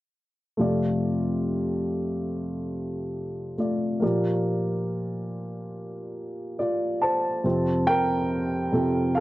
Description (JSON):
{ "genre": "pop", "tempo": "70 BPM", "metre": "4/4", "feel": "straight", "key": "F major", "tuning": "A4 = 440 Hz", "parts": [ { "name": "dark upright piano", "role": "solo", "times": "0.6-9.2 s", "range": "F2 to A5", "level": "-24 LUFS", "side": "equal", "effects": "none" } ], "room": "light reverb", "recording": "dry, close 1970s-style studio recording", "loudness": "-24 LUFS", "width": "side -17 dB against mid", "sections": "0.6-7.4 A section; 7.4-9.2 B section", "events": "upright piano solo 7.4-9.2", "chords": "0.6 F6; 4.0 Bb6; 7.4 F", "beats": "| 0.59 1.45 2.31 3.16 | 4.02 4.88 5.74 6.59 | 7.45 8.31 9.16" }